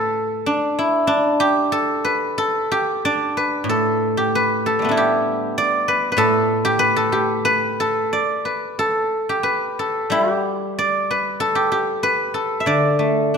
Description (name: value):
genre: chinese traditional, Chinese solo plucked strings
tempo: 88-98 BPM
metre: 2/4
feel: rubato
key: D zhi mode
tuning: A4 = 440 Hz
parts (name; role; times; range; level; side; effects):
- guzheng; solo; 0.0-13.4 s; A2 to E5; -17 LUFS; equal; none
room: moderate concert hall reverb, RT60 1.9 s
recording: minimal, uncompressed stereo recording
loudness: -17 LUFS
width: side -6 dB against mid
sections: 0.0-3.7 A section; 3.7-13.4 B section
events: none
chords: none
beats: 0.42 | 1.04 1.69 | 2.34 3.00 | 3.66 4.32 | 4.95 5.58 | 6.19 6.81 | 7.46 8.12 | 8.79 9.46 | 10.12 10.78 | 11.41 12.04 | 12.68 13.33